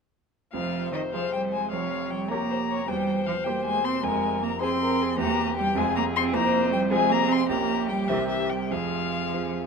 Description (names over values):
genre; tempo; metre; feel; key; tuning
quick classical-period movement for piano quartet; 103 BPM (dotted quarters); 6/8; rubato; F minor; A4 = 440 Hz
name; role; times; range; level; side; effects
muted violin; melody; 0.5-9.7 s; Eb5 to C6; -28 LUFS; left 8 dB; none
muted cello; second line; 0.5-9.7 s; Eb3 to C4; -29 LUFS; right 6 dB; none
clear grand piano; accompaniment; 0.5-9.7 s; E1 to Db5; -29 LUFS; right 2 dB; none
muted violin; second line; 0.6-9.6 s; G4 to Db5; -31 LUFS; left 3 dB; none
room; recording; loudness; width
light reverb; none; -23 LUFS; side -5 dB against mid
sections
0.5-9.7 A section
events
none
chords
0.5 Fm; 1.7 Gm7b5/F; 2.9 C7/E; 4.0 Fm; 5.2 C7/E; 5.8 Fm; 6.3 C7/F; 6.9 Fm; 7.5 Gdim/Bb; 8.1 C5; 8.7 Fm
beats
| 0.53 1.13 | 1.72 2.31 | 2.88 3.46 | 4.04 4.61 | 5.19 5.76 | 6.34 6.91 | 7.49 8.09 | 8.71 9.33